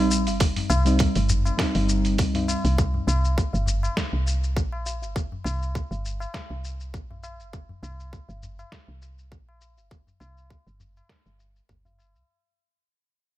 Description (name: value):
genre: organic downtempo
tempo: 101 BPM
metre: 4/4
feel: swing 55% on 16ths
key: unclear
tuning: A4 = 440 Hz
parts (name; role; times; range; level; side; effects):
- muted felt-like synth keys; accompaniment; 0.0-2.5 s; G3 to Eb4; -26 LUFS; equal; chorus, sidechain pumping, ping-pong delay
- woody FM bass; bass; 0.0-12.2 s; G1 to C2; -25 LUFS; equal; sidechain pumping
- dusty soul sampler-style drum kit; drums; 0.1-12.3 s; hi-hat, shaker, snare drum; -31 LUFS; equal; low-pass filter on hats, low-pass filter on perc, low-pass filter on snare
- tabla; percussion; 0.1-12.1 s; none; -32 LUFS; left 3 dB; none
- electronic kick drum; drums; 0.4-11.8 s; none; -25 LUFS; equal; none
room: light reverb, digital ambience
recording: none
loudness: -22 LUFS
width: side -14 dB against mid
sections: 0.0-12.3 A section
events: fade-out 0.0-12.3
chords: 0.0 Cm; 2.8 Gmadd11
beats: | 0.40 0.99 1.59 2.18 | 2.77 3.37 3.96 4.56 | 5.15 5.75 6.34 6.93 | 7.53 8.12 8.71 9.31 | 9.90 10.50 11.09 11.69